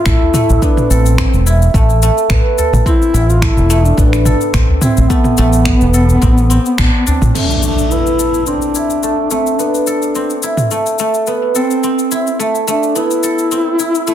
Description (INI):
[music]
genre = organic downtempo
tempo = 107 BPM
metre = 4/4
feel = swing 54% on 16ths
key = A minor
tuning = A4 = 441 Hz
[part]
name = dark duduk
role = melody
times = 0.0-14.1 s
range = B3 to F4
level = -16 LUFS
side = left 1 dB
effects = ping-pong delay
[part]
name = guzheng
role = arpeggios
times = 0.0-14.1 s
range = A3 to A4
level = -17 LUFS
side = right 2 dB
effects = low-pass filter, ping-pong delay
[part]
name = mellow fretless electric bass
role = bass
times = 0.1-7.3 s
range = E1 to A1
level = -12 LUFS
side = equal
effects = tube saturation, sidechain pumping
[part]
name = deep house drum kit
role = drums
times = 0.1-14.1 s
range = cabasa, crash cymbal, finger snaps, toms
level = -20 LUFS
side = left 1 dB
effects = studio ambience, soft clipping on snare
[part]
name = electronic kick drum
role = drums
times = 0.1-6.9 s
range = none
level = -14 LUFS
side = equal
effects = studio ambience
[part]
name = udu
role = percussion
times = 0.2-7.2 s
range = none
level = -18 LUFS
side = equal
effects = none
[part]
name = impact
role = sound effects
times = 7.3-9.6 s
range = none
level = -20 LUFS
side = equal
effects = none
[sound]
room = light reverb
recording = dense, heavily limited modern master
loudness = -10 LUFS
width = side -11 dB against mid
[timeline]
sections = 0.0-7.3 A section; 7.3-14.1 B section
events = band accent 6.8; impact 7.3-9.6; filter sweep on guzheng 7.3-14.1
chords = 0.0 Esus4; 7.3 Amadd9